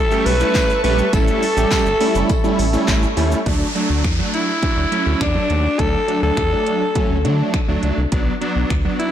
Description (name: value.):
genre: dance-pop.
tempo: 103 BPM.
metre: 4/4.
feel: straight.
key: D major.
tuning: A4 = 440 Hz.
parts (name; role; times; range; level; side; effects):
raspy alto saxophone; melody; 0.0-9.1 s; D4 to B4; -20 LUFS; left 1 dB; ping-pong delay.
soft supersaw; sustained chords; 0.0-3.4 s; A4 to C#6; -26 LUFS; equal; sidechain pumping.
big bright polysynth; accompaniment; 0.1-9.1 s; F#3 to G4; -21 LUFS; right 2 dB; sidechain pumping.
house drum kit; drums; 0.1-9.1 s; finger snaps, handclaps, hi-hat, kick drum, shaker; -21 LUFS; equal; soft clipping on snare.
round analog bass; bass; 0.3-8.9 s; F#1 to D3; -20 LUFS; equal; sidechain pumping.
tambourine; percussion; 0.3-3.3 s; none; -37 LUFS; left 12 dB; none.
downlifter; sound effects; 3.5-8.1 s; none; -29 LUFS; equal; none.
room: light reverb.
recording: blown-out, overdriven recording, overdrive.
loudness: -15 LUFS.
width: side -10 dB against mid.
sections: 0.0-3.5 A section; 3.5-9.1 B section.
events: none.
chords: 0.0 A7; 3.5 D; 8.1 Bm.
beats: 0.55 | 1.13 1.72 2.30 2.88 | 3.46 4.04 4.63 5.21 | 5.79 6.38 6.96 7.54 | 8.12 8.71.